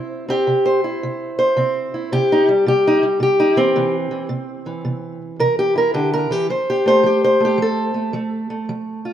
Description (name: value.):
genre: acoustic country blues, solo or duo.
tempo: 110 BPM.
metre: 4/4.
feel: swing 65% on 8ths.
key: C major.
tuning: A4 = 442 Hz.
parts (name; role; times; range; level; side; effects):
fingerpicked steel-string acoustic guitar; solo; 0.0-9.1 s; C3 to C5; -16 LUFS; equal; none.
room: light reverb, small room ambience.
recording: rough home demo mix.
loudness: -16 LUFS.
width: side -10 dB against mid.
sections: 0.0-9.1 A section.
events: none.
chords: 0.0 C; 6.5 F.